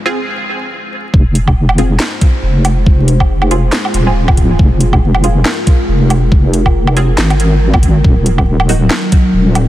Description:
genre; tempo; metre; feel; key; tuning
deep dubstep; 139 BPM; 4/4; swing 57% on 16ths, half-time; F phrygian; A4 = 440 Hz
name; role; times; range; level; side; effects
filtered dub chord stab; stabs; 0.1-8.9 s; Bb3 to Ab4; -21 LUFS; right 1 dB; phaser, analog chorus, dub echo
deep dark ambient pad; sustained chords; 1.6-9.7 s; Gb3 to C5; -19 LUFS; equal; chorus, built-in reverb
deep soft wobble bass; bass; 1.1-9.7 s; Eb1 to Ab1; -11 LUFS; equal; chorus
electronic kick drum; drums; 1.1-9.2 s; none; -9 LUFS; equal; high-pass filter on kick
garage drum kit; drums; 1.4-9.7 s; handclaps, hi-hat, snare drum, woodblock; -18 LUFS; right 1 dB; soft clipping on snare
room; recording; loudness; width
digital ambience; dense, heavily limited modern master, vinyl crackle; -9 LUFS; side -14 dB against mid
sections
0.0-1.1 A section; 1.1-9.7 B section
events
break 0.0-1.1; build-up 0.0-1.1; drop 1.1-9.7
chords
0.0 Fm; 8.0 Ebm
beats
0.27 0.71 | 1.14 1.57 2.00 2.43 | 2.86 3.29 3.73 4.16 | 4.59 5.02 5.45 5.88 | 6.32 6.75 7.18 7.61 | 8.04 8.47 8.91 9.34

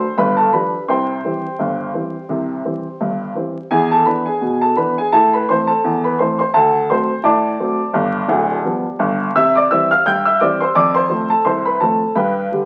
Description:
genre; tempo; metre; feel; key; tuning
ragtime piano; 85 BPM; 2/4; swing 56% on 16ths; C major; A4 = 440 Hz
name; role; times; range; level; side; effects
warm upright piano; solo; 0.0-12.7 s; D1 to G6; -17 LUFS; equal; none
room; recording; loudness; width
wet large studio reverb, RT60 1.0 s; very old 78 rpm record, vinyl crackle; -17 LUFS; mono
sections
0.0-3.7 A section; 3.7-12.7 B section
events
none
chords
0.2 G7; 0.9 C; 3.7 E7; 5.1 Am; 6.5 D7; 7.9 G7; 9.4 C; 10.8 F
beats
0.17 | 0.88 1.59 | 2.30 3.01 | 3.71 4.42 | 5.13 5.83 | 6.54 7.24 | 7.95 8.65 | 9.36 10.06 | 10.77 11.47 | 12.18

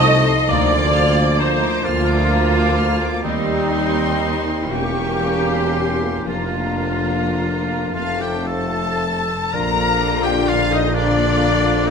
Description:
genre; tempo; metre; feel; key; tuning
classical, slow romantic movement for symphony orchestra; 35-45 BPM (dotted quarters); 6/8; rubato; Bb major; A4 = 442 Hz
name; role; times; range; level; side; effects
warm symphonic violin section; melody; 0.0-11.9 s; D5 to F6; -25 LUFS; left 5 dB; none
hollow small flute group; second line; 0.0-9.0 s; Eb5 to Eb6; -29 LUFS; right 4 dB; none
warm clarinet; second line; 0.0-11.9 s; A3 to Bb4; -30 LUFS; left 3 dB; none
warm oboe; second line; 0.0-11.9 s; D4 to Eb5; -27 LUFS; right 1 dB; none
warm symphonic violin section; second line; 0.0-11.9 s; G3 to A4; -28 LUFS; left 4 dB; none
dark bassoon; accompaniment; 0.0-11.9 s; F3 to D4; -28 LUFS; right 3 dB; none
rich symphonic viola section; accompaniment; 0.0-11.9 s; D3 to Eb5; -23 LUFS; equal; none
mellow French horn section; sustained chords; 0.0-11.9 s; F3 to F4; -26 LUFS; left 7 dB; none
concert harp; arpeggios; 0.0-11.9 s; Bb2 to C5; -29 LUFS; left 11 dB; none
clear symphonic double bass section; bass; 0.0-11.9 s; E1 to Eb2; -25 LUFS; right 2 dB; none
mellow tuba; bass; 0.0-11.9 s; E1 to Eb2; -26 LUFS; right 4 dB; none
rich symphonic cello section; bass; 0.0-11.9 s; D2 to C3; -27 LUFS; right 2 dB; none
warm trombone section; sustained chords; 9.5-11.9 s; F2 to F3; -29 LUFS; right 3 dB; none
room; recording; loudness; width
moderate concert hall reverb, RT60 2.1 s; none; -16 LUFS; side -6 dB against mid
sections
0.0-9.5 A section; 9.5-11.9 B section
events
none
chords
0.5 Bb/D; 3.2 Cm/Eb; 4.7 Edim7; 6.3 Bb/F; 8.0 F; 9.5 Bb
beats
| 0.48 1.85 | 3.25 4.73 | 6.28 7.95 | 9.54 10.96

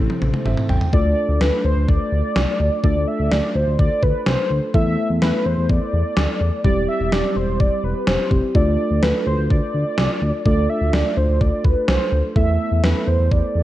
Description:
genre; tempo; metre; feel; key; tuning
synth-pop; 126 BPM; 4/4; straight; unclear; A4 = 441 Hz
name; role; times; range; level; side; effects
muted felt-like synth keys; accompaniment; 0.0-13.6 s; G3 to G5; -24 LUFS; equal; chorus
string machine, full ensemble; sustained chords; 0.0-0.9 s; C3 to C4; -33 LUFS; left 1 dB; phaser, ensemble chorus
smooth synth bass; bass; 0.0-13.6 s; E1 to E2; -20 LUFS; equal; none
gated 80s digital drum machine; drums; 0.1-13.4 s; kick drum, snare drum, toms; -20 LUFS; equal; gated reverb, gated reverb snare
warm velvety synth lead; melody; 0.9-13.6 s; B4 to E5; -23 LUFS; equal; chorus, ping-pong delay
room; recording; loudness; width
light reverb; worn, warbling old tape, cassette tape, warbly pitch drift; -16 LUFS; side -14 dB against mid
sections
0.9-13.6 A section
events
drum fill 0.0-0.9; synth keys fill 0.2-0.9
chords
0.0 Am; 0.9 Dm; 4.7 Esus4; 6.6 C/E; 8.6 Dm; 12.4 Esus4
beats
0.46 | 0.93 1.41 1.88 2.36 | 2.84 3.31 3.79 4.26 | 4.74 5.22 5.69 6.17 | 6.65 7.12 7.60 8.07 | 8.55 9.03 9.50 9.98 | 10.46 10.93 11.41 11.88 | 12.36 12.84 13.31

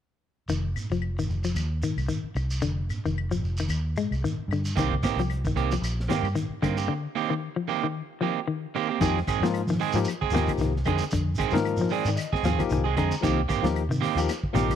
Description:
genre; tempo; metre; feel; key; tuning
afrobeat; 113 BPM; 4/4; swing 55% on 16ths; F dorian; A4 = 440 Hz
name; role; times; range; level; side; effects
semi-hollow electric guitar; arpeggios; 0.5-14.7 s; D3 to Ab3; -30 LUFS; left 6 dB; tremolo
vintage muted fingered electric bass; bass; 0.5-14.7 s; F1 to F3; -28 LUFS; equal; none
shekere; percussion; 0.5-14.8 s; none; -35 LUFS; right 2 dB; none
claves; percussion; 0.8-14.8 s; none; -40 LUFS; left 16 dB; none
electric guitar at the edge of break-up; stabs; 4.8-14.7 s; Eb3 to Ab4; -28 LUFS; right 12 dB; none
crunchy breakbeat drum kit; drums; 4.8-14.8 s; hi-hat, kick drum, snare drum; -31 LUFS; equal; none
barky tine electric piano; accompaniment; 9.0-14.8 s; F3 to Bb5; -30 LUFS; left 8 dB; overdrive
room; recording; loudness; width
studio reverb; dry, close 1970s-style studio recording; -24 LUFS; side -9 dB against mid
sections
0.5-9.0 A section; 9.0-14.8 B section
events
break 6.9-9.0; tine electric piano fill 11.7-13.2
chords
0.5 F7(no3); 4.8 Cm7; 9.0 Fm7; 13.2 Cm7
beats
| 0.49 1.02 1.56 2.10 | 2.63 3.16 3.70 4.23 | 4.76 5.30 5.83 6.36 | 6.89 7.42 7.95 8.48 | 9.01 9.54 10.07 10.60 | 11.12 11.65 12.18 12.71 | 13.23 13.76 14.29

